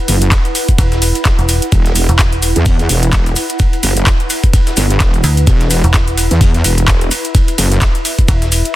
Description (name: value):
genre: bass house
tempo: 128 BPM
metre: 4/4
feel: swing 58% on 16ths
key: unclear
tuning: A4 = 440 Hz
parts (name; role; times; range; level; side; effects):
- ethereal airy pad; texture; 0.0-8.8 s; E4 to F#5; -21 LUFS; right 1 dB; ensemble chorus, built-in reverb, sidechain pumping
- wobble bass; bass; 0.1-7.8 s; E1 to E2; -13 LUFS; equal; chorus, overdrive, sidechain pumping
- dusty soul sampler-style drum kit; drums; 0.1-8.6 s; hi-hat, ride cymbal, snare drum; -25 LUFS; right 2 dB; overdrive, sidechain pumping on cymbals, high-pass filter on cymbals, high-pass filter on snare, sidechain pumping on hats, high-pass filter on hats, high-pass filter on room
- garage drum kit; drums; 0.1-8.7 s; handclaps, hi-hat; -18 LUFS; equal; none
- maracas; percussion; 0.1-8.7 s; none; -24 LUFS; left 5 dB; none
- electronic kick drum; drums; 0.3-8.4 s; none; -12 LUFS; equal; none
- metallic FM bass; bass; 0.8-8.6 s; E1 to D2; -13 LUFS; equal; sidechain pumping
room: little or no reverb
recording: dense, heavily limited modern master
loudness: -10 LUFS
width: side -15 dB against mid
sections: 0.0-8.8 A section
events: none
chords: 0.0 Esus2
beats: 0.32 0.79 1.25 | 1.72 2.19 2.66 3.13 | 3.60 4.07 4.54 5.00 | 5.47 5.94 6.41 6.88 | 7.35 7.82 8.29 8.75